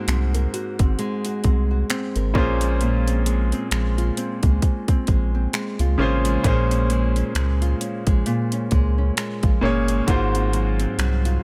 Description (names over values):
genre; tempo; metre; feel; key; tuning
contemporary R&B; 66 BPM; 4/4; swing 58% on 16ths; Bb minor; A4 = 440 Hz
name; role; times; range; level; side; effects
bright concert grand piano; accompaniment; 0.0-11.4 s; Ab2 to Db5; -28 LUFS; equal; none
nylon-string guitar; arpeggios; 0.0-11.4 s; Ab2 to Bb4; -29 LUFS; equal; delay
rubbery square bass; bass; 0.1-11.4 s; G1 to Db2; -24 LUFS; equal; none
trap drum kit; drums; 0.1-11.4 s; finger snaps, hi-hat, kick drum; -24 LUFS; equal; none
room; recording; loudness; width
little or no reverb; none; -21 LUFS; mono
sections
0.0-11.4 A section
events
none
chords
0.0 Ab9; 2.4 Bbm9; 6.4 Bbm7; 10.1 Ab13